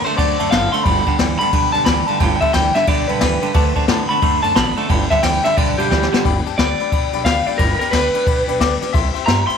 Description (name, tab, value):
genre	rockabilly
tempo	178 BPM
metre	4/4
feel	swing 63% on 8ths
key	G major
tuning	A4 = 440 Hz
part	electric guitar through a small old amp	melody	0.0-9.6 s	G4 to C6	-19 LUFS	left 1 dB	tape echo
part	bright upright piano	accompaniment	0.0-9.6 s	D5 to D6	-26 LUFS	left 13 dB	none
part	picked steel-string acoustic guitar	accompaniment	0.0-9.6 s	G2 to A4	-29 LUFS	left 11 dB	none
part	clean electric guitar	riff	0.0-6.2 s	G2 to B3	-21 LUFS	right 14 dB	wide subtle chorus
part	upright bass	bass	0.1-9.5 s	F#1 to A2	-23 LUFS	right 1 dB	none
part	jazz brush drum kit	drums	0.1-9.6 s	kick drum, ride cymbal, snare drum	-19 LUFS	left 2 dB	none
room	light reverb, studio reverb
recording	1960s-style stereo with parts hard left and right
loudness	-14 LUFS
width	side -7 dB against mid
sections	0.0-6.2 A section; 6.2-9.6 B section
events	clean electric guitar solo 0.0-6.2; drum fill 5.9-6.2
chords	0.0 D7; 0.9 G; 3.6 D7; 4.9 G; 8.9 C